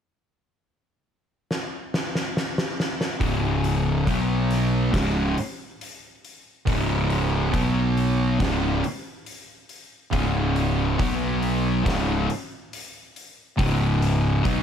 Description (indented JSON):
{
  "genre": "stoner and doom metal",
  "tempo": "69 BPM",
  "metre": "4/4",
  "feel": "straight",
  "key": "unclear",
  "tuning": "A4 = 440 Hz",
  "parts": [
    { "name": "oversized low-tuned drum kit", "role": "drums", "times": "1.5-14.6 s", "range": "hi-hat, kick drum, snare drum", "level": "-29 LUFS", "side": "equal", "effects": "none" },
    { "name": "fuzz guitar", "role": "riff", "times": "3.2-14.6 s", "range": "C#2 to B3", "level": "-22 LUFS", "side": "left 1 dB", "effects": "distortion" },
    { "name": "fuzz fingered electric bass", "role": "bass", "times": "3.2-14.6 s", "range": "C#1 to B1", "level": "-26 LUFS", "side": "right 1 dB", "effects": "overdrive" }
  ],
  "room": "light reverb",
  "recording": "none",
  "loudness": "-21 LUFS",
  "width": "side -8 dB against mid",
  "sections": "0.0-3.2 A section; 3.2-14.6 B section",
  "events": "drum fill 1.5-3.2",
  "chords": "0.0 N.C.; 3.2 C#5; 4.1 B5; 4.9 C#5; 7.5 B5; 8.4 C#5; 11.0 B5; 11.9 C#5",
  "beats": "0.62 1.48 2.35 | 3.21 4.08 4.94 5.81 | 6.67 7.54 8.40 9.27 | 10.13 11.00 11.86 12.73 | 13.59 14.45"
}